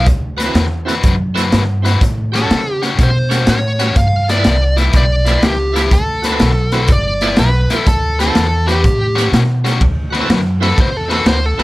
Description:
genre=electric blues shuffle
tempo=123 BPM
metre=4/4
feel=swing 67% on 8ths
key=D mixolydian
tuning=A4 = 440 Hz
part: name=smooth overdriven lead guitar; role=melody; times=0.0-11.6 s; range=G4 to F5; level=-18 LUFS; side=equal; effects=none
part: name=biting overdriven guitar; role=riff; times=0.0-11.6 s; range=G2 to B4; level=-19 LUFS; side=left 4 dB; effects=none
part: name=upright bass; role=bass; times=0.0-11.6 s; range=G1 to C#3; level=-16 LUFS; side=equal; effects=none
part: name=raw garage drum kit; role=drums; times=0.1-11.6 s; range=hi-hat, kick drum, ride cymbal, snare drum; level=-16 LUFS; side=equal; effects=none
part: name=bright tonewheel organ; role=accompaniment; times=0.4-11.6 s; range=B3 to C#5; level=-22 LUFS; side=right 6 dB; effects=slow rotary speaker, overdrive
room=little or no reverb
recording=none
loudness=-12 LUFS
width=side -18 dB against mid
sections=0.0-9.8 A section; 9.8-11.6 B section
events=lead electric guitar solo 9.8-11.6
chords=0.1 D13; 2.0 A13; 4.0 G13; 5.9 D13; 6.9 G13; 7.9 D13; 8.8 A13; 9.8 D13

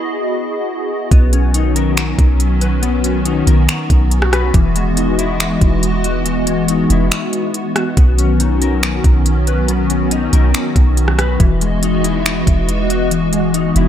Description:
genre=hip hop, atmospheric cloud-rap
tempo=140 BPM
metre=4/4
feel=half-time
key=B major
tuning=A4 = 441 Hz
part: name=hollow soft pad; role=sustained chords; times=0.0-13.9 s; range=D#3 to D#5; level=-18 LUFS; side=equal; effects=ensemble chorus, sidechain pumping
part: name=mellow electric guitar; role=arpeggios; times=1.1-13.9 s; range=E3 to B4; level=-21 LUFS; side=left 7 dB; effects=ensemble chorus, low-pass filter, ping-pong delay
part: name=soft 808-style bass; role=bass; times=1.1-13.9 s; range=E1 to B1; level=-16 LUFS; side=equal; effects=none
part: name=smooth R&B drum kit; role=drums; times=1.1-13.9 s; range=finger snaps, hi-hat, kick drum, rim click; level=-16 LUFS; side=equal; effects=none
room=light reverb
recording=none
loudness=-12 LUFS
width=side -10 dB against mid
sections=0.0-1.1 A section; 1.1-13.9 B section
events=break 0.0-1.1, 7.1-8.0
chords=0.0 Emaj9; 1.1 Bmaj9; 4.5 Emaj9; 8.0 Bmaj9; 11.4 Emaj9

